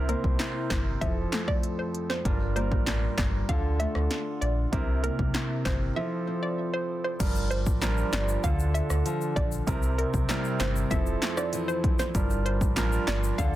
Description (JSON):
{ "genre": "dancehall", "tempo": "97 BPM", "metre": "4/4", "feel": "straight", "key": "unclear", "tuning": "A4 = 438 Hz", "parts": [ { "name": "warm grand piano", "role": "accompaniment", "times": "0.0-13.6 s", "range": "C3 to C5", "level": "-32 LUFS", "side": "right 5 dB", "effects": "none" }, { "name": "nylon-string guitar", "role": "arpeggios", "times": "0.0-13.6 s", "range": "F2 to E4", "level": "-34 LUFS", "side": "left 5 dB", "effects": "none" }, { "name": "sub bass with octave", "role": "bass", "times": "0.0-13.6 s", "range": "F1 to D2", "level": "-29 LUFS", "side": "equal", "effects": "none" }, { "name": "hollow square pluck", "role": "melody", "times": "0.1-13.5 s", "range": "Bb4 to F5", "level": "-34 LUFS", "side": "right 1 dB", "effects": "chorus, digital delay" }, { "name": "deep house drum kit", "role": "drums", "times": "0.1-13.5 s", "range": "crash cymbal, handclaps, hi-hat, kick drum, rim click, snare drum", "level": "-29 LUFS", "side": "equal", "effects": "none" }, { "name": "egg shaker and timbales", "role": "percussion", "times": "7.2-13.5 s", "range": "none", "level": "-41 LUFS", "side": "left 7 dB", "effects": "none" } ], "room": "digital ambience", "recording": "dense, heavily limited modern master", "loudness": "-25 LUFS", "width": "side -14 dB against mid", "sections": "0.0-7.2 A section; 7.2-13.6 B section", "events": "break 6.0-7.2", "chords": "0.0 C7; 1.0 Fmaj7; 2.3 Gm7; 3.5 Dm; 4.7 C7; 6.0 Fmaj7; 7.2 Gm7; 8.4 Dm; 9.7 C7; 10.9 Fmaj7; 12.1 Gm7" }